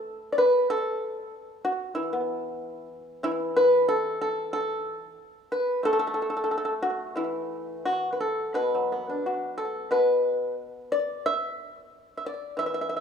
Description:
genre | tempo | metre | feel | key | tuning
chinese traditional, Chinese solo plucked strings | 85-96 BPM | 4/4 | rubato | E shang mode | A4 = 440 Hz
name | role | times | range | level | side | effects
pipa | solo | 0.0-13.0 s | B2 to E5 | -25 LUFS | equal | slapback echo
room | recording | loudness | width
moderate lush hall reverb, RT60 2.3 s | rough home demo mix | -24 LUFS | side -7 dB against mid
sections
0.0-13.0 A section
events
none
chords
none

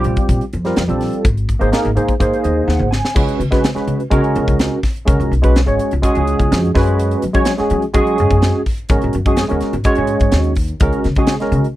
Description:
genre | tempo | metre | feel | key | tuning
electric jazz fusion | 125 BPM | 4/4 | straight | unclear | A4 = 440 Hz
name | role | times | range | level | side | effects
barky tine electric piano | accompaniment | 0.0-11.7 s | G3 to Ab5 | -17 LUFS | right 1 dB | overdrive, ensemble chorus
upright bass | bass | 0.0-11.6 s | Ab1 to Gb3 | -18 LUFS | equal | none
crisp fusion drum kit | drums | 0.0-11.8 s | crash cymbal, hi-hat, kick drum, snare drum, toms | -18 LUFS | equal | none
room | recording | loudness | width
little or no reverb | dry, close 1970s-style studio recording | -13 LUFS | side -15 dB against mid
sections
0.0-3.2 A section; 3.2-11.8 B section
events
tine electric piano fill 2.2-3.2; drum fill 2.7-3.2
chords
0.0 Bbsus2; 1.2 Ab; 3.2 Db7sus4; 6.8 Gbsus24; 8.9 Ab9sus4; 10.8 Dbsus4

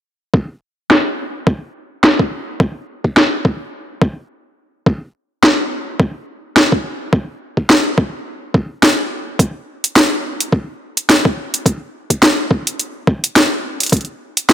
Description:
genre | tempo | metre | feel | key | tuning
glitch hop | 106 BPM | 4/4 | swing 57% on 16ths | none | none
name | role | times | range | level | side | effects
electronic kick drum | drums | 0.3-14.1 s | none | -14 LUFS | equal | high-pass filter on kick
drum and bass drum kit | drums | 0.9-14.5 s | hi-hat, snare drum | -13 LUFS | equal | overdrive, low-pass filter on snare, low-pass filter on hats, low-pass filter on room
room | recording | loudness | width
light reverb | none | -14 LUFS | side -11 dB against mid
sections
0.3-14.5 A section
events
filter sweep on drum 0.3-14.5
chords
none

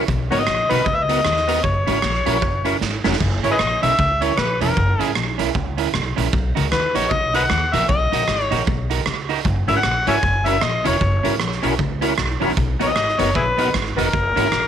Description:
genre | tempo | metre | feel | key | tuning
ska | 154 BPM | 4/4 | swing 60% on 8ths | F# mixolydian | A4 = 444 Hz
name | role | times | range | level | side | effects
electric guitar at the edge of break-up | accompaniment | 0.0-14.5 s | B3 to A#4 | -25 LUFS | right 11 dB | wide subtle chorus
percussive tonewheel organ | stabs | 0.0-3.2, 9.7-14.5 s | B3 to A#4 | -26 LUFS | left 11 dB | overdrive, chorus vibrato, slow rotary speaker
upright bass | bass | 0.0-14.7 s | E1 to D#2 | -23 LUFS | equal | none
mellow electric guitar | riff | 0.1-14.7 s | E2 to D#3 | -30 LUFS | left 7 dB | none
raw garage drum kit | drums | 0.1-14.6 s | crash cymbal, hi-hat, kick drum, rim click, snare drum | -24 LUFS | right 4 dB | slapback echo
overdriven harmonica | melody | 0.3-14.7 s | E4 to G#5 | -20 LUFS | left 2 dB | none
room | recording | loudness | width
light reverb, small room reverb | 1960s-style stereo with parts hard left and right | -17 LUFS | side -9 dB against mid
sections
0.0-3.2 A section; 3.2-14.7 A section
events
drum fill 2.8-3.2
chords
0.1 Bmaj7; 1.6 F#7; 6.3 Bmaj7; 9.4 F#7; 12.6 Bmaj7; 14.1 F#7

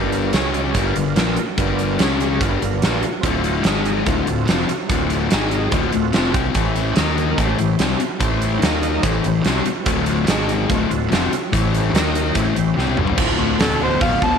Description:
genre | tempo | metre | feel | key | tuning
blues rock power trio and southern rock | 145 BPM | 4/4 | straight | unclear | A4 = 436 Hz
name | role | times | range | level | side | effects
overdriven tonewheel organ | sustained chords | 0.0-14.4 s | G#3 to F5 | -26 LUFS | right 11 dB | chorus vibrato, slow rotary speaker
sludgy distorted guitar | riff | 0.0-14.4 s | D2 to Eb4 | -21 LUFS | left 9 dB | overdrive
fuzz fingered electric bass | bass | 0.0-14.4 s | D1 to Eb2 | -24 LUFS | right 2 dB | overdrive
huge arena drum kit | drums | 0.1-14.3 s | crash cymbal, hi-hat, kick drum, snare drum, toms | -21 LUFS | right 2 dB | none
overdriven harmonica | melody | 13.6-14.4 s | A4 to A5 | -19 LUFS | right 2 dB | none
room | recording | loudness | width
light reverb, small room ambience | 1960s-style stereo with parts hard left and right | -16 LUFS | side -7 dB against mid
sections
0.0-13.2 A section; 13.2-14.4 B section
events
drum fill 12.8-13.2; harmonica solo 13.2-14.4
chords
0.3 C#5; 0.8 G7#9; 2.0 C#5; 2.4 G7#9; 3.2 D7#9; 3.7 G#5; 4.1 D7#9; 5.3 G#5; 5.7 D7#9; 6.6 A7#9; 7.0 Eb5; 7.4 A7#9; 8.6 Eb5; 9.0 A7#9; 9.9 D7#9; 10.3 G#5; 10.7 D7#9; 11.5 A7#9; 11.9 Eb5; 12.4 A7#9; 13.2 D7#9

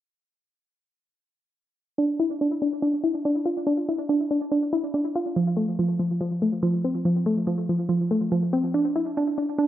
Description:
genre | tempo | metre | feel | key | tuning
hip hop | 142 BPM | 4/4 | half-time | D minor | A4 = 440 Hz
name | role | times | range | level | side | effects
soft round pluck | arpeggios | 2.0-9.7 s | F3 to F4 | -22 LUFS | equal | chorus, low-pass filter, analog delay
room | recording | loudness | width
moderate spring reverb, RT60 1.5 s | echo-heavy mix | -22 LUFS | side -12 dB against mid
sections
2.0-9.7 A section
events
filter sweep on synth pluck 2.0-9.7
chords
2.0 Dmadd9; 5.4 F; 8.7 Dsus2

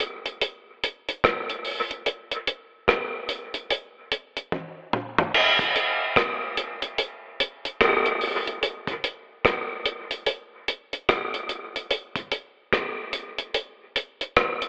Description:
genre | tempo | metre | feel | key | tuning
reggae | 73 BPM | 4/4 | swing 62% on 16ths | none | none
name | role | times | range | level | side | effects
deep reggae drum kit | drums | 0.0-14.7 s | crash cymbal, hi-hat, kick drum, rim click, toms | -22 LUFS | equal | dub echo
room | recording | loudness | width
wet spring reverb, RT60 2.4 s | telephone sound | -23 LUFS | side -25 dB against mid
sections
0.0-5.3 A section; 5.3-14.7 B section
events
drum fill 4.5-5.3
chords
none

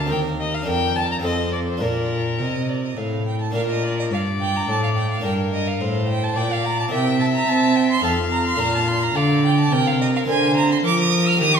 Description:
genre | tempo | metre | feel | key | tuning
classical, baroque-style sonata movement with continuo | 107 BPM | 3/4 | straight | unclear | A4 = 436 Hz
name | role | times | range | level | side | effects
warm violin | melody | 0.0-11.6 s | G4 to Bb5 | -26 LUFS | left 5 dB | none
warm violin | second line | 0.0-11.6 s | Bb4 to F6 | -24 LUFS | right 4 dB | none
harpsichord | accompaniment | 0.0-11.6 s | Eb2 to Bb4 | -27 LUFS | equal | none
dark cello | bass | 0.0-11.6 s | D2 to C4 | -21 LUFS | right 1 dB | none
room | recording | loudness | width
wet recital hall reverb, RT60 1.8 s | recorded in a church or concert hall | -18 LUFS | side -7 dB against mid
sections
0.0-3.5 A section; 3.5-11.6 B section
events
none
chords
0.1 Cm7/Eb; 0.7 Bb/F; 1.2 F7; 1.8 Bb; 3.5 Gm; 6.9 C7; 8.0 F7; 8.6 Bb; 10.3 Bb/D

